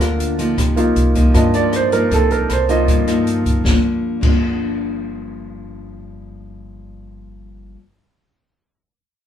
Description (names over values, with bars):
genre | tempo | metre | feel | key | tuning
bossa nova | 156 BPM | 4/4 | straight | G minor | A4 = 440 Hz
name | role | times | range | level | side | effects
clear concert grand piano | accompaniment | 0.0-3.7 s | Bb3 to Eb5 | -18 LUFS | right 2 dB | none
nylon-string guitar | accompaniment | 0.0-7.8 s | G2 to Bb4 | -21 LUFS | left 2 dB | none
upright bass | bass | 0.0-7.7 s | G1 to G2 | -20 LUFS | equal | none
open jazz drum kit | drums | 0.0-4.3 s | crash cymbal, hi-hat, kick drum, rim click, snare drum | -20 LUFS | equal | none
room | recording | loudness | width
light reverb | band playing live in one room | -14 LUFS | side -9 dB against mid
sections
0.0-3.7 A section; 3.7-6.7 B section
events
grand piano solo 0.0-3.7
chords
0.0 Gm7 (rootless); 0.6 Cm11; 3.7 Gm7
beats
0.19 | 0.58 0.96 1.35 1.73 | 2.12 2.50 2.88 3.27 | 3.65 4.04 4.42 4.81 | 5.19 5.58 5.96 6.34